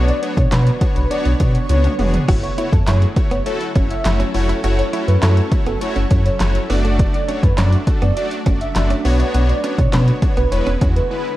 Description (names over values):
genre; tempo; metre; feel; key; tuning
dance-pop; 102 BPM; 4/4; straight; F# minor; A4 = 440 Hz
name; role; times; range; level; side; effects
big bright polysynth; accompaniment; 0.0-11.3 s; G#3 to D5; -23 LUFS; equal; chorus, sidechain pumping
shimmering ambient pad; sustained chords; 0.0-11.4 s; D3 to C#5; -28 LUFS; right 1 dB; chorus, built-in reverb, sidechain pumping
sub bass with octave; bass; 0.0-11.0 s; E1 to B2; -17 LUFS; equal; sidechain pumping
airy dreamy lead; melody; 0.1-11.4 s; A4 to E5; -25 LUFS; right 1 dB; chorus, sidechain pumping, ping-pong delay
deep house drum kit; drums; 0.1-11.1 s; crash cymbal, handclaps, hi-hat, kick drum, snare drum, toms; -18 LUFS; equal; overdrive
direct-recorded clean electric guitar; riff; 2.3-10.9 s; A3 to F#4; -27 LUFS; right 3 dB; wide subtle chorus
room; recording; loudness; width
light reverb; worn, warbling old tape, cassette tape, warbly pitch drift; -14 LUFS; side -15 dB against mid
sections
0.0-11.4 A section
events
drum fill 1.7-2.3; break 11.1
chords
0.0 Bmadd9; 2.3 F#m7; 6.7 D/F#; 9.1 Bmadd9; 10.5 E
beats
0.52 1.11 1.70 | 2.29 2.87 3.46 4.05 | 4.64 5.23 5.82 6.40 | 6.99 7.58 8.17 8.76 | 9.34 9.93 10.52 11.11